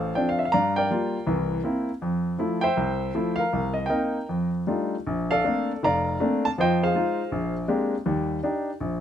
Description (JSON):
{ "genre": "solo jazz", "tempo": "160 BPM", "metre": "4/4", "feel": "swing 64% on 8ths, rubato", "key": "F major, Bb major from 5.1 s", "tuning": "A4 = 440 Hz", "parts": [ { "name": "warm baby grand piano", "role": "solo", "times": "0.0-9.0 s", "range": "F1 to Bb5", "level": "-23 LUFS", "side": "equal", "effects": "none" } ], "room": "little or no reverb", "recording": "close, detailed microphones", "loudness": "-23 LUFS", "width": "side -10 dB against mid", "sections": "0.0-5.1 A section; 5.1-9.0 B section", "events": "none", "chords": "0.0 Dm7; 0.5 Gm7; 1.3 C7; 2.0 Fmaj7; 3.5 Cm7; 4.3 F13; 5.1 Bbmaj9; 6.6 Fm7; 7.3 Bb13; 8.1 Ebmaj7", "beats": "0.17 | 0.54 0.91 1.28 1.65 | 2.02 2.40 2.77 3.15 | 3.53 3.91 4.29 4.68 | 5.07 5.45 5.83 6.21 | 6.58 6.95 7.33 7.70 | 8.07 8.44 8.82" }